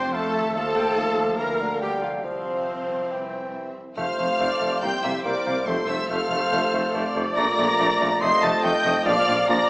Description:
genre	classical, dramatic, fast romantic movement for symphony orchestra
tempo	141 BPM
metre	4/4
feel	straight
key	F major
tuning	A4 = 441 Hz
part	warm symphonic violin section	melody	0.0-9.7 s	E5 to C7	-30 LUFS	left 1 dB	none
part	concert flute	second line	0.0-9.7 s	C5 to C6	-29 LUFS	equal	none
part	warm clarinet	second line	0.0-9.6 s	C5 to G5	-32 LUFS	equal	none
part	warm symphonic violin section	second line	0.0-9.7 s	C5 to C6	-31 LUFS	equal	none
part	warm symphonic viola section	accompaniment	0.0-9.7 s	C4 to Eb5	-27 LUFS	equal	none
part	warm French horn section	sustained chords	0.0-9.7 s	C3 to F4	-33 LUFS	equal	none
part	concert harp	arpeggios	0.0-9.7 s	F2 to C5	-41 LUFS	left 1 dB	none
part	dark symphonic double bass section	bass	0.0-9.6 s	F1 to Eb2	-38 LUFS	equal	none
part	warm symphonic cello section	bass	0.0-9.6 s	C2 to C3	-36 LUFS	equal	none
part	clear bassoon	accompaniment	0.1-9.6 s	D3 to Bb3	-30 LUFS	equal	none
part	warm trombone section	sustained chords	4.0-9.7 s	F2 to G3	-33 LUFS	equal	none
part	warm trumpet section	stabs	4.0-9.7 s	C5 to Eb5	-27 LUFS	equal	none
part	warm tuba	bass	4.0-9.6 s	F1 to C2	-31 LUFS	equal	none
room	wet recital hall reverb, RT60 1.7 s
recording	small speaker sound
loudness	-20 LUFS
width	side -24 dB against mid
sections	0.0-4.0 A section; 4.0-9.7 B section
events	none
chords	0.0 F; 0.6 F7/Eb; 1.4 Bb/D; 2.2 F/C; 3.1 C; 4.0 F; 4.8 C9; 5.7 F; 7.4 Bbmaj7; 8.2 F7; 9.1 Bb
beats	0.15 | 0.56 0.98 1.39 1.82 | 2.25 2.68 3.11 3.54 | 3.97 4.40 4.83 5.25 | 5.68 6.10 6.53 6.95 | 7.37 7.79 8.22 8.64 | 9.06 9.49

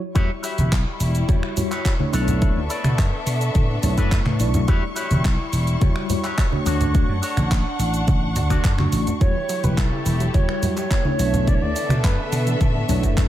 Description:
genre	nu-disco, nu disco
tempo	106 BPM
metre	4/4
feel	straight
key	E dorian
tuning	A4 = 439 Hz
part	mellow tine electric piano	accompaniment	0.1-13.3 s	G3 to C#6	-28 LUFS	left 1 dB	medium stereo tremolo, sidechain pumping, tape echo
part	electric guitar with an envelope filter	riff	0.1-9.0 s	D4 to E5	-30 LUFS	left 1 dB	wide subtle chorus, tape echo
part	warm symphonic violin section	sustained chords	0.2-13.3 s	G3 to C#6	-29 LUFS	left 1 dB	sidechain pumping
part	vintage slap bass	bass	0.2-13.2 s	E1 to B2	-22 LUFS	equal	high-pass filter
part	electronic kick drum	drums	0.2-13.3 s	none	-20 LUFS	equal	none
part	house drum kit	drums	0.2-13.3 s	finger snaps, handclaps, hi-hat, shaker	-31 LUFS	right 1 dB	none
part	congas	percussion	0.6-13.0 s	none	-26 LUFS	right 1 dB	none
part	silver concert flute	melody	9.2-12.6 s	A4 to D5	-28 LUFS	right 3 dB	analog delay
part	wide unison pluck	arpeggios	9.2-13.3 s	C#3 to B3	-30 LUFS	right 2 dB	sidechain pumping, analog delay
room	light reverb, digital ambience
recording	none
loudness	-18 LUFS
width	side -13 dB against mid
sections	0.2-13.3 A section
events	break 0.0; drop 0.2-13.3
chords	0.2 Em69; 2.1 Bm11; 4.7 Em69; 6.7 Dmaj7; 9.2 Em69; 11.2 Bm11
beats	| 0.15 0.72 1.29 1.85 | 2.42 2.98 3.55 4.12 | 4.68 5.25 5.82 6.38 | 6.95 7.51 8.08 8.65 | 9.21 9.78 10.34 10.91 | 11.48 12.04 12.61 13.17

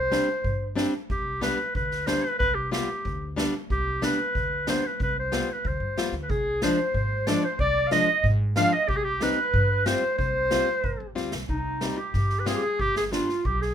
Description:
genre	klezmer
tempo	92 BPM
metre	2/4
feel	straight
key	unclear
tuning	A4 = 440 Hz
part	clear clarinet	melody	0.0-13.7 s	Eb4 to F5	-26 LUFS	equal	none
part	growling clarinet	second line	0.0-0.7, 6.3-13.7 s	Eb4 to F5	-31 LUFS	right 4 dB	none
part	upright bass	bass	0.0-13.7 s	G1 to Ab2	-29 LUFS	equal	none
part	nylon-string guitar	accompaniment	0.1-13.3 s	F3 to F4	-28 LUFS	left 2 dB	none
part	street-band drum kit	drums	0.1-13.7 s	kick drum, snare drum	-32 LUFS	equal	none
room	moderate small room reverb, RT60 0.5 s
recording	minimal, uncompressed stereo recording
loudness	-23 LUFS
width	side -9 dB against mid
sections	0.0-1.1 A section; 1.1-11.5 A section; 11.5-13.7 B section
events	drum fill 11.2-11.5; clarinet solo 11.5-13.7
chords	0.0 C5; 1.1 G/C; 6.3 Ddim/C; 8.9 C5; 11.5 Cm; 12.8 G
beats	0.45 | 1.10 1.75 | 2.40 3.05 | 3.70 4.35 | 5.00 5.65 | 6.30 6.95 | 7.60 8.25 | 8.89 9.54 | 10.19 10.84 | 11.49 12.15 | 12.80 13.45

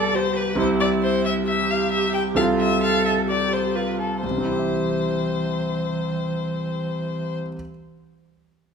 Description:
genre	quick classical-period movement for piano quartet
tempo	130 BPM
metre	4/4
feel	uneven beats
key	C major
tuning	A4 = 437 Hz
part	rich violin	melody	0.0-7.3 s	A4 to G5	-25 LUFS	left 6 dB	none
part	dark cello	second line	0.0-7.3 s	E3 to A4	-26 LUFS	right 4 dB	none
part	bright concert grand piano	accompaniment	0.0-7.7 s	C2 to E5	-24 LUFS	equal	none
room	wet recital hall reverb, RT60 1.6 s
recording	minimal, uncompressed stereo recording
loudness	-20 LUFS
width	side -6 dB against mid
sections	0.0-4.2 A section; 4.2-8.0 B section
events	slowing down 0.0-4.2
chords	0.0 G7/C; 0.6 C; 2.4 F/C; 4.2 C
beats	0.14 | 0.58 1.02 1.47 1.91 | 2.37 2.82 3.29 3.75 | 4.23 4.71 5.18 5.65 | 6.12 6.59 7.07 7.54

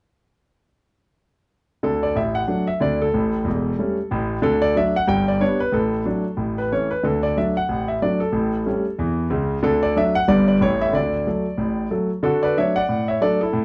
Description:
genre	jazz, stride piano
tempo	185 BPM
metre	4/4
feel	swing 59% on 8ths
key	D major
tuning	A4 = 440 Hz
part	clear concert grand piano	solo	1.8-13.6 s	E1 to G5	-21 LUFS	equal	none
room	moderate studio ambience, RT60 0.5 s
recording	dark, warm production, nothing above 10.8 kHz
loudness	-21 LUFS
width	mono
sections	1.8-12.2 A section; 12.2-13.6 A section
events	none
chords	1.8 D; 3.1 A7; 4.4 D; 5.1 G; 5.7 D/A; 6.4 A; 7.0 D; 8.3 A7; 9.6 D; 10.3 G; 10.6 A; 10.9 D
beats	| 1.83 2.16 2.48 2.81 | 3.13 3.46 3.78 4.11 | 4.43 4.76 5.08 5.41 | 5.73 6.06 6.38 6.71 | 7.03 7.36 7.68 8.01 | 8.33 8.66 8.98 9.31 | 9.63 9.96 10.28 10.61 | 10.93 11.26 11.58 11.91 | 12.23 12.55 12.88 13.20 | 13.53

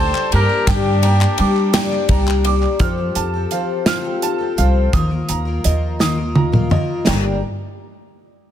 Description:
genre	indie folk with a building arrangement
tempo	56 BPM (dotted quarters)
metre	6/8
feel	straight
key	G minor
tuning	A4 = 442 Hz
part	mellow trumpet	melody	0.0-2.1 s	G4 to C5	-22 LUFS	left 4 dB	analog delay
part	warm fiddle	second line	0.0-2.1 s	D4 to A4	-27 LUFS	right 6 dB	none
part	picked twelve-string acoustic guitar	accompaniment	0.0-7.4 s	G2 to Bb4	-24 LUFS	left 6 dB	none
part	warm upright piano	arpeggios	0.0-7.4 s	D5 to F6	-25 LUFS	right 9 dB	none
part	upright bass	bass	0.0-7.4 s	G1 to G3	-18 LUFS	equal	none
part	group handclap	percussion	0.1-2.7 s	none	-28 LUFS	left 6 dB	none
part	natural country drum kit	drums	0.3-7.2 s	china cymbal, hi-hat, kick drum, ride cymbal, snare drum, toms	-19 LUFS	equal	soft clipping on snare
part	tambourine	percussion	0.5-2.4 s	none	-37 LUFS	right 14 dB	none
part	fingerpicked steel-string acoustic guitar	accompaniment	2.8-7.4 s	G2 to C5	-24 LUFS	left 3 dB	none
room	studio reverb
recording	dense, heavily limited modern master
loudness	-15 LUFS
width	side -10 dB against mid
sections	0.0-2.8 A section; 2.8-7.1 B section; 7.1-8.5 C section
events	drum fill 6.0-7.1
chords	0.0 Gmadd9; 0.7 Gm; 2.8 Fadd9; 4.9 Ebsus2; 7.1 Gm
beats	| 0.68 1.74 | 2.81 3.87 | 4.94 6.01 | 7.08

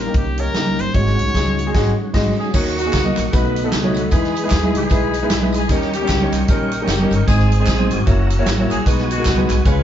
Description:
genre	uptempo gospel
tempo	152 BPM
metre	4/4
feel	swing 60% on 8ths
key	unclear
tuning	A4 = 440 Hz
part	bright trumpet	melody	0.0-2.1 s	G4 to Db5	-24 LUFS	left 2 dB	none
part	tonewheel organ	sustained chords	0.0-9.8 s	Eb3 to Fb6	-28 LUFS	equal	slow rotary speaker, chorus vibrato
part	upright bass	bass	0.0-9.8 s	Gb1 to E2	-21 LUFS	equal	none
part	warm baby grand piano	accompaniment	0.1-9.8 s	Ab2 to Eb5	-22 LUFS	equal	none
part	swinging big-band drum kit	drums	0.1-9.8 s	crash cymbal, hi-hat, kick drum, snare drum	-19 LUFS	equal	none
part	dark saxophone section	melody	2.4-9.8 s	Bb3 to Cb5	-24 LUFS	left 1 dB	none
part	tambourine and handclaps	percussion	2.5-9.8 s	none	-32 LUFS	right 2 dB	none
room	moderate studio ambience, RT60 0.5 s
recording	band playing live in one room, nothing above 7.5 kHz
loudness	-15 LUFS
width	side -10 dB against mid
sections	0.0-2.5 A section; 2.5-9.8 B section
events	band accent 1.7-2.5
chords	0.0 Eb7; 0.9 Ab7sus4; 2.5 Ebm7; 3.3 Cb7; 4.1 Emaj7; 5.7 Eb7; 7.3 Ab; 8.1 Gb7; 8.9 Cb6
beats	0.15 0.55 | 0.94 1.34 1.74 2.14 | 2.54 2.93 3.33 3.72 | 4.12 4.51 4.91 5.30 | 5.70 6.09 6.49 6.88 | 7.28 7.68 8.07 8.47 | 8.86 9.26 9.65

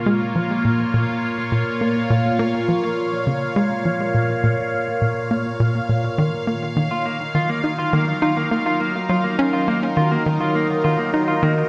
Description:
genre	ambient, sequencer-driven space music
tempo	103 BPM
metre	4/4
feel	straight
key	Bb minor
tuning	A4 = 440 Hz
part	phased analog pad	sustained chords	0.0-11.7 s	Bb2 to F5	-24 LUFS	equal	phaser, chorus
part	tight sequencer bass	riff	0.0-11.6 s	Bb2 to Eb4	-24 LUFS	equal	delay
part	clean electric guitar	arpeggios	6.9-11.5 s	Bb3 to F4	-26 LUFS	equal	delay
room	wet concert hall reverb, RT60 2.2 s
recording	none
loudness	-20 LUFS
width	mono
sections	0.0-11.7 A section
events	none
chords	0.0 Bbm; 6.8 Ebmadd9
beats	0.36 0.94 1.52 | 2.10 2.69 3.27 3.85 | 4.43 5.02 5.60 6.18 | 6.76 7.35 7.93 8.51 | 9.10 9.68 10.26 10.84 | 11.43

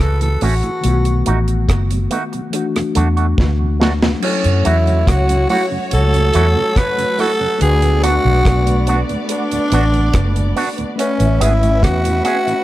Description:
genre	lovers rock reggae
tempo	71 BPM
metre	4/4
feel	straight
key	unclear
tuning	A4 = 440 Hz
part	growling tenor saxophone	melody	0.0-12.6 s	C#4 to B4	-18 LUFS	equal	tape echo
part	mellow tine electric piano	accompaniment	0.0-12.6 s	D#3 to G#5	-24 LUFS	left 5 dB	tape echo
part	vintage muted fingered electric bass	bass	0.0-12.2 s	F#1 to F#2	-15 LUFS	equal	none
part	deep reggae drum kit	drums	0.0-12.6 s	crash cymbal, hi-hat, kick drum, rim click, snare drum	-19 LUFS	equal	none
part	mellow tonewheel organ	accompaniment	0.2-12.5 s	D2 to G#4	-27 LUFS	right 3 dB	chorus vibrato, slow rotary speaker
part	electric guitar with an envelope filter	stabs	0.4-12.4 s	A3 to G#4	-25 LUFS	right 3 dB	wide subtle chorus, tape echo
part	dark studio string section	second line	4.2-12.6 s	A3 to E5	-24 LUFS	right 1 dB	tape echo
room	light reverb, studio reverb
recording	none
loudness	-13 LUFS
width	side -15 dB against mid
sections	0.0-4.2 A section; 4.2-12.6 B section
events	drum fill 3.4-4.2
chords	0.0 A6; 0.8 B7; 2.5 E9sus4; 4.2 F#m7; 7.6 D6; 11.0 Amaj9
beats	| 0.84 1.68 2.53 3.38 | 4.22 5.07 5.92 6.76 | 7.61 8.45 9.29 10.14 | 10.98 11.83

